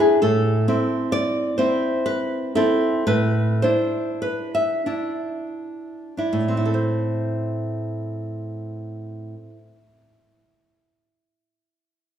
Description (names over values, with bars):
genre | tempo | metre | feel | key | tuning
romantic piece for solo classical guitar | 42-67 BPM | 3/4 | rubato | A minor | A4 = 439 Hz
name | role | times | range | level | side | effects
nylon-string guitar | solo | 0.0-9.8 s | A2 to E5 | -20 LUFS | equal | none
room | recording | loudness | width
wet recital hall reverb, RT60 1.6 s | recorded in a church or concert hall | -20 LUFS | side -9 dB against mid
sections
0.0-6.8 A section; 6.8-10.5 B section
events
slowing down 0.0-6.8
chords
0.2 Am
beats
| 0.21 1.12 2.07 | 3.07 4.24 5.50 | 6.84 8.03 9.25